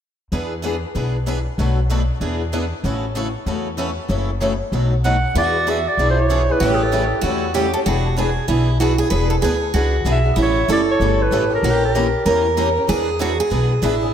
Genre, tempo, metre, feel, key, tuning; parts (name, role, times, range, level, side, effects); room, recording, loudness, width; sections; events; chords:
acoustic string swing (jazz manouche); 191 BPM; 4/4; swing 60% on 8ths; E mixolydian; A4 = 440 Hz
picked steel-string acoustic guitar; accompaniment; 0.3-14.1 s; B2 to A#4; -24 LUFS; left 6 dB; ensemble chorus
picked swing-style acoustic guitar; accompaniment; 0.3-13.9 s; B2 to B4; -27 LUFS; right 5 dB
upright bass; bass; 0.3-14.1 s; E1 to E2; -20 LUFS; equal
clear clarinet; melody; 5.0-7.3, 10.1-12.2 s; G#4 to F#5; -21 LUFS; right 2 dB; analog delay
picked steel-string acoustic guitar; second line; 5.4-14.1 s; E4 to B4; -20 LUFS; right 3 dB; analog delay
moderate plate reverb, RT60 2.4 s; dreamy mix soaked in reverb; -16 LUFS; side -9 dB against mid
0.3-5.4 A section; 5.4-14.1 B section
0.3 E7; 1.6 Bm7; 2.2 E7; 2.8 A6; 4.1 F#m7; 4.7 B7; 5.4 E7; 6.6 A7; 7.9 E7; 10.4 A7; 11.6 A#dim7; 12.9 E7